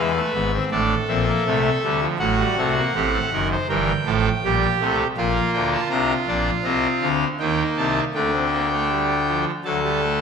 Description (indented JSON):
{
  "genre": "classical, baroque-style 4-part fugue for pipe organ",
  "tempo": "80 BPM",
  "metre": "4/4",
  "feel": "straight",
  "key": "G minor",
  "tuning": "A4 = 438 Hz",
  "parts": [
    { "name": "pipe organ, trumpet", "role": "solo", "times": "0.0-10.2 s", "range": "F#1 to Bb5", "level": "-19 LUFS", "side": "equal", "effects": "none" }
  ],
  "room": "wet recital hall reverb, RT60 1.6 s",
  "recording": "none",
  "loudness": "-19 LUFS",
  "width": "side -6 dB against mid",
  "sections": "0.0-10.2 A section",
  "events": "none",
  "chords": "0.0 E; 0.7 Am; 2.2 F#dim7; 3.7 Gm; 5.2 Bb; 6.6 Cm; 8.1 Dsus4; 9.7 D"
}